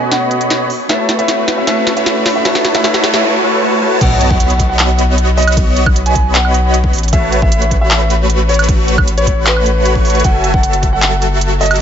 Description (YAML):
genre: future bass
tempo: 154 BPM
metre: 4/4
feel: half-time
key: unclear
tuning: A4 = 445 Hz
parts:
  - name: dark baby grand piano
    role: melody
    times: 0.0-11.8 s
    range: B4 to G#5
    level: -19 LUFS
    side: equal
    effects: sidechain pumping, ping-pong delay
  - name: tine electric piano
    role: accompaniment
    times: 0.0-4.0 s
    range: B2 to D#5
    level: -23 LUFS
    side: right 2 dB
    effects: sidechain pumping, tape echo
  - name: supersaw chords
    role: riff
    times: 0.0-11.8 s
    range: F#3 to C#6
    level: -16 LUFS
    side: equal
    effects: sidechain pumping, low-pass filter
  - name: riser, noise sweep and sub drop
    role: sound effects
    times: 0.2-5.6 s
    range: none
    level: -22 LUFS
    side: equal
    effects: none
  - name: trap drum kit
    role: drums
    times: 0.1-11.8 s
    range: crash cymbal, handclaps, hi-hat, snare drum, woodblock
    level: -18 LUFS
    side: right 1 dB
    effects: none
  - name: saturated sub bass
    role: bass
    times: 4.0-11.8 s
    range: F#1 to B1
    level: -14 LUFS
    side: equal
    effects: sidechain pumping
  - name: electronic kick drum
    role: drums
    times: 4.0-10.9 s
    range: none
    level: -14 LUFS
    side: equal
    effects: overdrive
room: light reverb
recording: nothing above 7.8 kHz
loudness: -10 LUFS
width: side -8 dB against mid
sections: 0.0-4.0 A section; 4.0-11.8 B section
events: build-up 0.0-4.0; drum fill 0.0-3.2; riser 0.2-3.2; noise sweep 2.5-4.0; drop 4.0-11.8; impact 4.0-5.6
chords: 0.0 B7; 0.7 A6; 4.0 B; 6.9 A6; 10.2 F#m7